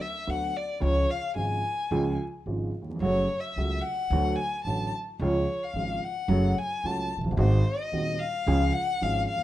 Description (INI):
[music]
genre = tango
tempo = 110 BPM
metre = 4/4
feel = rubato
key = unclear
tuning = A4 = 440 Hz
[part]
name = warm violin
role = second line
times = 0.0-9.4 s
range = B#4 to A5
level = -30 LUFS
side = left 2 dB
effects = plate reverb
[part]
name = warm baby grand piano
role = accompaniment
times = 0.3-9.4 s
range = D#1 to G#4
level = -29 LUFS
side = right 1 dB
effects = none
[part]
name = upright bass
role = bass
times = 0.3-9.2 s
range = E#1 to D#2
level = -28 LUFS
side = equal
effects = none
[sound]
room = moderate small room reverb, RT60 0.5 s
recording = rough home demo mix, vinyl crackle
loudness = -25 LUFS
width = side -14 dB against mid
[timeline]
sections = 0.0-9.4 A section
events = violin solo 0.0-9.4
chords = 0.0 Bm; 0.8 C#; 3.0 F#m; 4.1 D; 5.2 C#; 6.3 F#m; 7.4 G#7; 8.5 C#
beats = 0.27 | 0.82 1.37 1.92 2.47 | 3.02 3.57 4.11 4.66 | 5.21 5.75 6.30 6.84 | 7.38 7.92 8.47 9.01